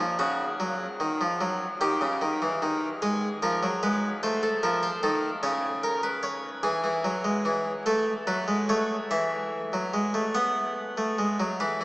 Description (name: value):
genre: classical, baroque-style two-part invention for harpsichord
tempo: 49 BPM (dotted quarters)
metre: 6/8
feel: straight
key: E major from 6.6 s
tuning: A4 = 440 Hz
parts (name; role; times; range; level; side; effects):
- harpsichord; solo; 0.0-11.8 s; C#3 to F#5; -25 LUFS; equal; none
room: wet cathedral reverb, RT60 5.5 s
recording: in a vast, echoing space, small speaker sound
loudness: -25 LUFS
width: side -21 dB against mid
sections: 0.0-11.6 A section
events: none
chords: 0.0 F#maj7(no3); 0.6 D#madd9; 1.8 D#7; 3.0 G#m; 4.2 F7; 5.4 A#m/C#; 6.6 Eadd9; 7.9 A; 9.1 Eadd9; 10.4 B5